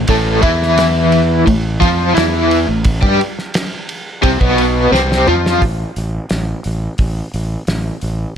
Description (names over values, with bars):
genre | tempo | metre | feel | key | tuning
psychedelic rock | 87 BPM | 4/4 | straight | A minor | A4 = 440 Hz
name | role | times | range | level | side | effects
overdriven electric guitar | riff | 0.0-5.6 s | A2 to G4 | -13 LUFS | left 1 dB | tremolo
fuzz fingered electric bass | bass | 0.0-8.2 s | A1 to G2 | -18 LUFS | equal | overdrive
cloth-damped thuddy drum kit | drums | 0.1-8.2 s | hi-hat, kick drum, ride cymbal, snare drum, toms | -19 LUFS | equal | none
room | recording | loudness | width
small room ambience | none | -12 LUFS | side -8 dB against mid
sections
0.0-5.6 A section; 5.6-8.4 B section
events
drum fill 4.9-5.6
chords
0.0 Am; 5.6 N.C.